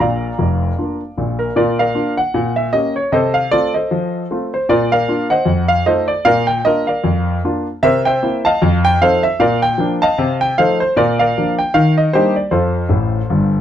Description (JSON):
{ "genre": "jazz, stride piano", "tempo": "153 BPM", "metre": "4/4", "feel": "swing 58% on 8ths", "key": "Bb major", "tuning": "A4 = 443 Hz", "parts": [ { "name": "clear concert grand piano", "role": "solo", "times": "0.0-13.6 s", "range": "F1 to Bb5", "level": "-13 LUFS", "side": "equal", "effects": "none" } ], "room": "light reverb", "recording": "dark, warm production, nothing above 10.3 kHz", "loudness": "-13 LUFS", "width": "side -10 dB against mid", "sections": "0.0-1.6 A section; 1.6-13.6 B section", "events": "grand piano fill 12.9-13.6", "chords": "0.0 Bb; 2.3 Bbdim7; 3.1 F7/C; 4.7 Bb; 5.5 F7; 6.3 Bb; 7.8 C7; 8.6 F7; 9.4 Bb; 10.2 F7/C; 11.0 Bb; 11.7 Ebmaj7; 12.5 F" }